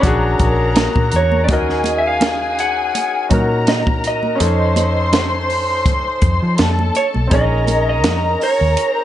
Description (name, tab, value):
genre	lush 1970s-style soul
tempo	82 BPM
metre	4/4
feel	swing 54% on 16ths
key	Bb minor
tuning	A4 = 441 Hz
part	electric guitar through a small old amp	melody	0.0-9.0 s	Db5 to Gb5	-20 LUFS	right 2 dB	none
part	muted studio string section	second line	0.0-9.0 s	Ab4 to C6	-20 LUFS	left 2 dB	none
part	clear concert grand piano	accompaniment	0.0-9.0 s	C4 to Db5	-22 LUFS	left 2 dB	none
part	vintage muted fingered electric bass	bass	0.0-8.7 s	Bb1 to F3	-19 LUFS	equal	none
part	compact cocktail drum kit	drums	0.0-9.0 s	hi-hat, kick drum, snare drum	-19 LUFS	equal	none
part	congas	percussion	0.0-8.2 s	none	-25 LUFS	right 4 dB	none
room	little or no reverb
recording	nothing above 10.5 kHz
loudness	-14 LUFS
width	side -12 dB against mid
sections	0.0-9.0 A section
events	none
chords	0.0 Bb7alt; 1.5 Ebm7; 4.4 F7b13; 7.3 Bbm11